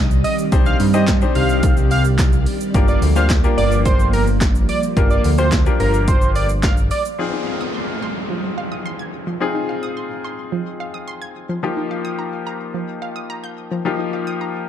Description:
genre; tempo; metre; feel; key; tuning
dance-pop; 108 BPM; 4/4; straight; F dorian; A4 = 442 Hz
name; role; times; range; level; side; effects
string machine, cellos; sustained chords; 0.0-7.2 s; Eb3 to D5; -24 LUFS; equal; ensemble chorus, sidechain pumping
fat analog bass; bass; 0.0-6.9 s; G1 to G2; -18 LUFS; equal; sidechain pumping
punchy analog drum machine; drums; 0.1-7.2 s; handclaps, hi-hat, kick drum, shaker, snare drum; -17 LUFS; equal; none
octave-doubled lead; melody; 0.2-7.0 s; Bb4 to F5; -23 LUFS; right 2 dB; chorus, ping-pong delay
bright grand piano; accompaniment; 0.5-14.7 s; F3 to C5; -24 LUFS; left 5 dB; sidechain pumping
group handclap; percussion; 1.1-6.8 s; none; -36 LUFS; right 4 dB; none
wide unison pluck; arpeggios; 7.2-14.5 s; F3 to Ab6; -28 LUFS; moving between left 3 dB and right 8 dB; auto-pan, sidechain pumping, ping-pong delay
downlifter; sound effects; 7.2-11.6 s; none; -28 LUFS; equal; none
room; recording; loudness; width
light reverb, digital ambience; dark, warm production; -16 LUFS; side -10 dB against mid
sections
0.0-7.2 A section; 7.2-14.7 B section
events
drop 0.0-7.2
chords
0.0 Cmadd9; 2.7 Gm7; 7.2 Fm7; 11.6 Ebadd9/F

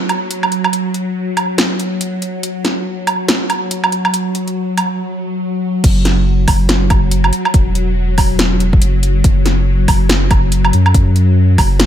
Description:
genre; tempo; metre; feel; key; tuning
deep dubstep; 141 BPM; 4/4; swing 59% on 16ths, half-time; unclear; A4 = 438 Hz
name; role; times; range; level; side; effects
bowed-like drone; sustained chords; 0.0-11.9 s; F#3; -19 LUFS; left 1 dB; built-in reverb
deep house drum kit; drums; 0.1-11.9 s; crash cymbal, hi-hat, snare drum, woodblock; -16 LUFS; right 1 dB; overdrive
soft dub sub bass; bass; 5.8-11.9 s; E1 to F#2; -13 LUFS; equal; none
electronic kick drum; drums; 5.8-11.7 s; none; -13 LUFS; equal; overdrive
room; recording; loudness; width
light reverb; none; -12 LUFS; side -10 dB against mid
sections
0.0-5.8 A section; 5.8-11.9 B section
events
build-up 0.0-5.8; break 5.0-5.8; drop 5.8-11.9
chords
0.0 N.C.; 5.8 Esus2

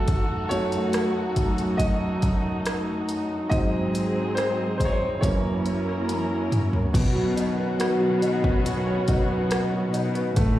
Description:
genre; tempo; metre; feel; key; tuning
pop ballad; 70 BPM; 4/4; straight; unclear; A4 = 441 Hz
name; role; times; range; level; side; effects
clear upright piano; accompaniment; 0.0-10.6 s; F#2 to D#5; -26 LUFS; right 1 dB; slapback echo
muted studio string section; sustained chords; 0.0-10.6 s; F#2 to A#4; -27 LUFS; equal; none
deep house drum kit; drums; 0.1-10.6 s; crash cymbal, hi-hat, kick drum, rim click, toms; -25 LUFS; equal; overdrive
warm symphonic cello section; bass; 6.9-10.6 s; A2 to B2; -28 LUFS; left 2 dB; none
room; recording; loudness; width
moderate club reverb, RT60 0.6 s; live gig heard through the venue's PA, recital hall reverb; -22 LUFS; side -14 dB against mid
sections
0.0-6.9 A section; 6.9-10.6 B section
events
upright piano solo 0.0-6.9; drum fill 6.1-6.9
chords
0.1 D#dim/F#; 3.5 G#7; 5.2 F#7; 6.9 Badd9

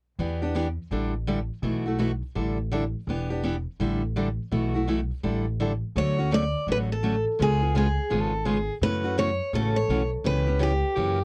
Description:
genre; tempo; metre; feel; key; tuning
acoustic string swing (jazz manouche); 167 BPM; 4/4; swing 63% on 8ths; D major; A4 = 441 Hz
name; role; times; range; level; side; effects
picked steel-string acoustic guitar; accompaniment; 0.2-11.2 s; B2 to A4; -30 LUFS; equal; none
upright bass; bass; 0.2-11.2 s; E1 to F#2; -30 LUFS; equal; none
picked steel-string acoustic guitar; melody; 6.0-11.0 s; G4 to D5; -30 LUFS; equal; none
growling soprano saxophone; second line; 8.1-8.8, 11.0-11.2 s; G4 to A4; -30 LUFS; equal; none
room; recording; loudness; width
little or no reverb; worn, warbling old tape, cassette tape, warbly pitch drift; -26 LUFS; mono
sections
0.2-6.0 A section; 6.0-11.2 B section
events
none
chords
0.2 Em7; 0.9 A7sus4; 1.6 B7sus4; 2.4 A7sus4; 3.1 Em7; 3.8 A7sus4; 4.5 B7sus4; 5.2 A7sus4; 6.0 Dmaj7; 7.4 C#7; 8.8 F#m7; 10.3 C#m7b5

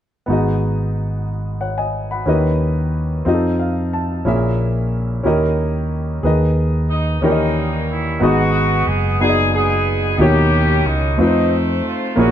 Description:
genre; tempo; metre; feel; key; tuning
gospel; 61 BPM (dotted quarters); 6/8; straight; G# minor; A4 = 440 Hz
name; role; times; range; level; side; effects
clear concert grand piano; accompaniment; 0.3-12.3 s; G#2 to B5; -19 LUFS; left 1 dB; none
fingered electric bass; bass; 0.3-12.3 s; F#1 to F2; -19 LUFS; equal; none
warm horn section; melody; 6.9-12.3 s; G3 to G#4; -19 LUFS; equal; none
room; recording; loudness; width
moderate stone room reverb, RT60 0.9 s; band playing live in one room; -15 LUFS; side -10 dB against mid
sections
0.3-8.2 A section; 8.2-12.3 B section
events
grand piano fill 3.3-4.3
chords
0.3 G#m7; 2.3 D#7b9b13; 3.3 F7; 4.3 A#m7b5; 5.2 D#7b9; 6.2 G#m/D#; 7.2 D#7b9; 8.2 G#m7; 10.2 D#7b9b13; 11.2 F7

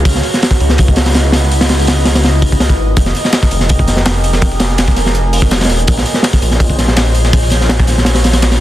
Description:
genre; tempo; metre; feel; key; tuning
drum and bass, jungle; 165 BPM; 4/4; straight; F phrygian; A4 = 439 Hz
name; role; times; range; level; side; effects
warbly tape-like pad; sustained chords; 0.0-8.6 s; Fb4 to Eb5; -19 LUFS; right 1 dB; chorus, built-in reverb, phaser
detuned saw bass; bass; 0.0-8.6 s; Eb1 to Db2; -13 LUFS; equal; none
crunchy breakbeat drum kit; drums; 0.1-8.6 s; hi-hat, kick drum, snare drum; -12 LUFS; equal; none
breakbeat sampler-style drum kit; drums; 3.0-8.6 s; hi-hat, snare drum; -23 LUFS; left 1 dB; high-pass filter on hats, high-pass filter on snare
room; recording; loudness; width
little or no reverb; dense, heavily limited modern master; -9 LUFS; side -14 dB against mid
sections
0.0-8.6 A section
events
none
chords
0.1 Dbm11; 3.0 Fm11; 5.9 Bbm11

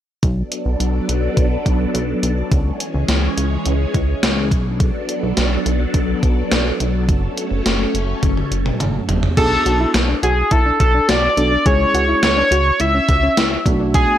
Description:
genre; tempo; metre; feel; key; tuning
synth-pop; 105 BPM; 4/4; straight; B dorian; A4 = 440 Hz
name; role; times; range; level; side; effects
phased string machine; sustained chords; 0.2-9.3 s; E3 to D5; -22 LUFS; equal; ensemble chorus, phaser
chorused synth bass; bass; 0.2-14.1 s; F#1 to C#2; -20 LUFS; equal; none
gated 80s digital drum machine; drums; 0.2-14.1 s; crash cymbal, hi-hat, kick drum, snare drum, toms; -19 LUFS; equal; gated reverb, gated reverb snare, overdrive
octave-doubled lead; melody; 9.4-14.2 s; G#4 to E5; -16 LUFS; equal; chorus
mellow tine electric piano; accompaniment; 9.4-14.2 s; G#3 to A4; -23 LUFS; right 2 dB; none
soft round pluck; arpeggios; 9.4-14.2 s; C#4 to G#4; -23 LUFS; left 3 dB; chorus, analog delay
room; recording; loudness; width
light reverb, digital ambience; dry, gritty hardware recording; -15 LUFS; side -11 dB against mid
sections
0.2-9.4 A section; 9.4-14.2 B section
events
drum fill 8.2-9.4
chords
0.2 Bm7; 2.5 C#m; 4.5 Bm7; 7.1 F#m; 9.4 Bm7; 11.7 C#m; 13.7 Bm7

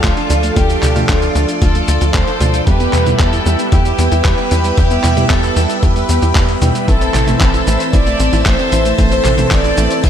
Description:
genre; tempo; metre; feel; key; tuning
italo disco; 114 BPM; 4/4; straight; A minor; A4 = 441 Hz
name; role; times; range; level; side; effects
warm symphonic violin section; melody; 0.0-10.1 s; D4 to E5; -19 LUFS; equal; ping-pong delay
string machine, full ensemble; sustained chords; 0.0-10.1 s; A4 to E6; -21 LUFS; equal; phaser, ensemble chorus
warbly dusty pluck; arpeggios; 0.0-10.1 s; G3 to F4; -23 LUFS; left 2 dB; chorus, tape echo
warm grand piano; stabs; 0.0-10.1 s; E3 to G4; -21 LUFS; right 5 dB; tape echo
tight sequencer bass; bass; 0.0-10.1 s; A1 to E2; -16 LUFS; equal; none
dusty soul sampler-style drum kit; drums; 0.0-10.1 s; cabasa, handclaps, hi-hat, toms; -20 LUFS; left 1 dB; overdrive
electronic kick drum; drums; 0.0-10.1 s; none; -15 LUFS; equal; overdrive
room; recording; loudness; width
moderate plate reverb, RT60 2.1 s; dreamy mix soaked in reverb; -11 LUFS; side -9 dB against mid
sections
0.0-10.1 A section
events
none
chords
0.0 Dm; 2.7 Em; 6.9 Am

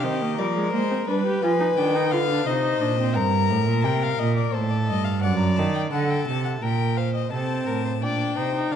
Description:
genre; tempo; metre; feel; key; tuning
classical, baroque-style fugue for string quartet; 86 BPM; 3/4; straight; C minor; A4 = 438 Hz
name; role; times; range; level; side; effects
warm violin; melody; 0.0-8.8 s; B4 to Bb5; -29 LUFS; left 10 dB; none
rich violin; second line; 0.0-8.8 s; G4 to D5; -27 LUFS; left 4 dB; none
warm viola; accompaniment; 0.0-3.2, 7.3-8.8 s; G3 to G4; -27 LUFS; right 1 dB; none
dark cello; bass; 0.0-8.8 s; F#2 to Ab3; -24 LUFS; right 3 dB; none
room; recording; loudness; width
wet recital hall reverb, RT60 1.5 s; dark, warm production; -21 LUFS; side -8 dB against mid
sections
0.0-7.3 A section; 7.3-8.8 B section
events
none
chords
0.4 Dm7b5/F; 1.1 G7; 2.5 Cm; 3.2 Gm; 4.5 Am7b5; 5.2 D7/F#; 6.6 Gm/Bb; 7.3 Cm

